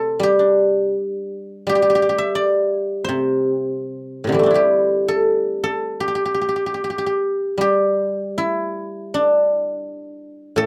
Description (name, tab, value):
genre	chinese traditional, Chinese solo plucked strings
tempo	74-85 BPM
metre	4/4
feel	rubato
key	G zhi mode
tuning	A4 = 443 Hz
part	guzheng	solo	0.0-10.7 s	A2 to G5	-20 LUFS	equal	none
room	light reverb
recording	none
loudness	-19 LUFS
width	mono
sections	0.0-7.6 A section; 7.6-10.7 B section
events	none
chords	none